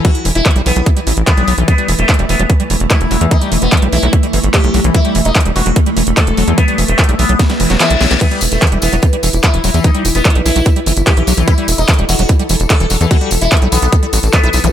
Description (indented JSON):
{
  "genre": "psychedelic trance",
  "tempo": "147 BPM",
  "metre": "4/4",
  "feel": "straight",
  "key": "E harmonic minor",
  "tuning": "A4 = 440 Hz",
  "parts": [
    { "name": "sitar", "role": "melody", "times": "0.0-14.6 s", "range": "A3 to A4", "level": "-19 LUFS", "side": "left 1 dB", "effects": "phaser, vintage 12-bit sampler grit, sidechain pumping, tape echo" },
    { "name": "pulsing gated texture", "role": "sustained chords", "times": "0.0-14.7 s", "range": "E3 to A4", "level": "-20 LUFS", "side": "equal", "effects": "chorus, built-in reverb, sidechain pumping" },
    { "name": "liquid acid bass", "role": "riff", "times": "0.0-14.7 s", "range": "D#3 to E4", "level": "-20 LUFS", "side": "moving between left 7 dB and right 5 dB", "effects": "chorus, auto-pan, sidechain pumping, tape echo" },
    { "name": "drum and bass drum kit", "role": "drums", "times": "0.0-14.7 s", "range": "crash cymbal, handclaps, hi-hat, snare drum", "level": "-18 LUFS", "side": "right 1 dB", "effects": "overdrive" },
    { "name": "electronic kick drum", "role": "drums", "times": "0.0-14.4 s", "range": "none", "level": "-11 LUFS", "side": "equal", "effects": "overdrive" },
    { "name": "tight sequencer bass", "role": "bass", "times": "0.3-14.7 s", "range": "E1 to E2", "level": "-14 LUFS", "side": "equal", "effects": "none" },
    { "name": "reverse cymbal and zap", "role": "sound effects", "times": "7.5-8.2, 14.6-14.7 s", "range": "none", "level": "-20 LUFS", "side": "left 5 dB", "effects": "none" },
    { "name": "tambourine", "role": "percussion", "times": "8.2-14.7 s", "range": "none", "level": "-23 LUFS", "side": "left 5 dB", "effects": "none" }
  ],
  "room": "digital ambience",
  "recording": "none",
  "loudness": "-10 LUFS",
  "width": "side -10 dB against mid",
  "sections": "0.0-14.7 A section",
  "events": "drum fill 7.4-8.2; reverse cymbal 7.5-8.2; kick drops out 7.8-8.2",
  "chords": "0.0 E5"
}